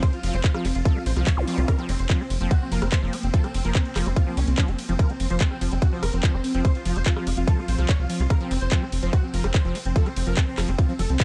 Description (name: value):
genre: psychedelic trance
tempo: 145 BPM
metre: 4/4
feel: straight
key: F major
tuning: A4 = 440 Hz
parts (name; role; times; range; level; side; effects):
- dense compressed supersaw; melody; 0.0-11.2 s; C4 to Db5; -35 LUFS; equal; phaser, cassette tape, sidechain pumping, tape echo
- pulsing gated texture; sustained chords; 0.0-11.2 s; F3 to C4; -35 LUFS; equal; chorus, built-in reverb, sidechain pumping
- liquid acid bass; riff; 0.0-11.2 s; F3 to A3; -35 LUFS; equal; chorus, sidechain pumping, dub echo
- drum and bass drum kit; drums; 0.0-11.2 s; handclaps, hi-hat, ride cymbal, rim click; -35 LUFS; equal; none
- electronic kick drum; drums; 0.0-11.2 s; none; -23 LUFS; equal; none
- round analog bass; bass; 0.2-11.2 s; F1 to C2; -27 LUFS; equal; none
- zap; sound effects; 1.4-1.5 s; none; -36 LUFS; equal; none
room: digital ambience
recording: dark, warm production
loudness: -23 LUFS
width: mono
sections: 0.0-11.2 A section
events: none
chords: 0.0 F5